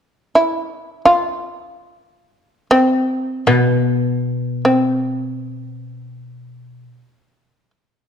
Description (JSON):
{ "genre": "japanese traditional, Japanese chamber music", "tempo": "free time", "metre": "none", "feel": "none", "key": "unclear", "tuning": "A4 = 439 Hz", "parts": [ { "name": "shamisen", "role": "melody", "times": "0.4-7.7 s", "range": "B3 to F4", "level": "-15 LUFS", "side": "equal", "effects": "none" }, { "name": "koto", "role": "accompaniment", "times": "3.5-6.8 s", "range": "B2", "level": "-20 LUFS", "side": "left 2 dB", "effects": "none" } ], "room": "moderate recital hall reverb, RT60 1.6 s", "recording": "dark, warm production", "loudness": "-15 LUFS", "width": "side -8 dB against mid", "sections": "0.0-8.1 A section", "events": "none", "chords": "none" }